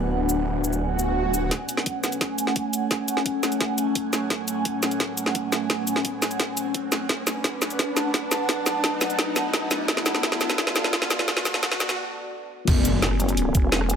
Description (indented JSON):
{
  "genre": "dark technical drum and bass",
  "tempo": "172 BPM",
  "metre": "4/4",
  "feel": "straight",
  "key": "F# minor",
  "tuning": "A4 = 440 Hz",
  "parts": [
    { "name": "deep dark ambient pad", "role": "sustained chords", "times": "0.0-14.0 s", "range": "A3 to D5", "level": "-33 LUFS", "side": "left 1 dB", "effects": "chorus, built-in reverb, sidechain pumping" },
    { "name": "snarling distorted saw bass", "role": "bass", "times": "0.0-1.5, 12.7-13.0 s", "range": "D1 to F#1", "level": "-26 LUFS", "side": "equal", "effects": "distortion, overdrive" },
    { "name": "airy breathy pad", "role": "texture", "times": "0.0-14.0 s", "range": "A3 to A5", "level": "-27 LUFS", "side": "equal", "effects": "chorus, phaser, sidechain pumping" },
    { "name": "drum and bass drum kit", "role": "drums", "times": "0.3-14.0 s", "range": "cabasa, crash cymbal, hi-hat, rim click, snare drum", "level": "-24 LUFS", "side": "equal", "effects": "overdrive" },
    { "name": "swell, riser and impact", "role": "sound effects", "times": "0.9-14.0 s", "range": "none", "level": "-32 LUFS", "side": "right 2 dB", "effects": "none" },
    { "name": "electronic kick drum", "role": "drums", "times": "1.5-13.6 s", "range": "none", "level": "-26 LUFS", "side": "equal", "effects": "overdrive, high-pass filter on kick" },
    { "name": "vowel-sweep wobble bass", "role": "bass", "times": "13.0-14.0 s", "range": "E1 to F#1", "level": "-24 LUFS", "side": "equal", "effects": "chorus" }
  ],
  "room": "moderate lush hall reverb, RT60 2.1 s",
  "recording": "high-pass filter",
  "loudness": "-22 LUFS",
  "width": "side -7 dB against mid",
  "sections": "0.0-1.5 A section; 1.5-12.7 B section; 12.7-14.0 C section",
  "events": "swell 0.9-1.5; build-up 1.5-12.7; drum fill 1.5-12.0; riser 1.5-12.0; filter sweep on ambient pad 1.5-12.7; break 12.0-12.7; drop 12.7-14.0; impact 12.7-14.0",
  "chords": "0.0 D6; 1.5 F#madd9; 7.1 D6; 12.7 F#madd9"
}